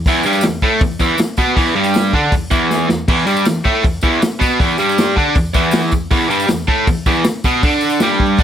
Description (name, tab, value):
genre	garage rock duo or trio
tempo	158 BPM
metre	4/4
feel	straight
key	unclear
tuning	A4 = 440 Hz
part	crunchy overdriven guitar	riff	0.0-8.4 s	E2 to D4	-14 LUFS	right 1 dB	none
part	tambourine	percussion	0.0-8.4 s	none	-34 LUFS	left 5 dB	none
part	vintage drum kit	drums	0.1-8.4 s	crash cymbal, hi-hat, kick drum, snare drum	-17 LUFS	equal	none
room	light reverb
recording	none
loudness	-12 LUFS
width	side -9 dB against mid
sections	0.0-8.4 A section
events	drum fill 2.7-3.1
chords	0.0 E5